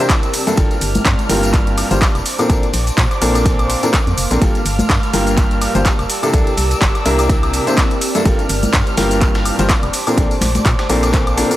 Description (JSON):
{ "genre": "piano house", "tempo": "125 BPM", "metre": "4/4", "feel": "swing 56% on 16ths", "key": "unclear", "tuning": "A4 = 440 Hz", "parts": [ { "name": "muted studio violin section", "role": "sustained chords", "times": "0.0-11.6 s", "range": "Bb4 to F6", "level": "-24 LUFS", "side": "right 1 dB", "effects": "sidechain pumping" }, { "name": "clear upright piano", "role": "riff", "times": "0.0-11.6 s", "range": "G2 to C5", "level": "-18 LUFS", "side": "left 1 dB", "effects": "sidechain pumping, analog delay" }, { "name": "granular cloud pad", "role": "texture", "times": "0.0-11.6 s", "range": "Bb3 to D6", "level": "-25 LUFS", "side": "equal", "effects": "built-in reverb, sidechain pumping" }, { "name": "dusty soul sampler-style drum kit", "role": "drums", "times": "0.1-11.5 s", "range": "hi-hat, ride cymbal, snare drum", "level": "-30 LUFS", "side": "right 1 dB", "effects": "sidechain pumping on cymbals, high-pass filter on cymbals, high-pass filter on snare, sidechain pumping on hats, high-pass filter on hats" }, { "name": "electronic kick drum", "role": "drums", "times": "0.1-11.2 s", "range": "none", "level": "-16 LUFS", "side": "equal", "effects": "overdrive" }, { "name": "house drum kit", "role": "drums", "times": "0.1-11.6 s", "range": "handclaps, hi-hat, shaker, woodblock", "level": "-20 LUFS", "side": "equal", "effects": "overdrive" }, { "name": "tambourine and congas", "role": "percussion", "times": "0.1-11.6 s", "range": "none", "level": "-26 LUFS", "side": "left 2 dB", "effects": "none" }, { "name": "organ-like FM bass", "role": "bass", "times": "0.6-11.4 s", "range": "F1 to Bb2", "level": "-20 LUFS", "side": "equal", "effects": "sidechain pumping" } ], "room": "little or no reverb", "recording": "dry, gritty hardware recording", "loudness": "-13 LUFS", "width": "side -14 dB against mid", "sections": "0.0-11.6 A section", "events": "none", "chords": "0.0 C13; 0.6 Gm9; 2.3 Bbmaj9; 6.1 C13; 8.3 Gm9; 9.9 Bbmaj9" }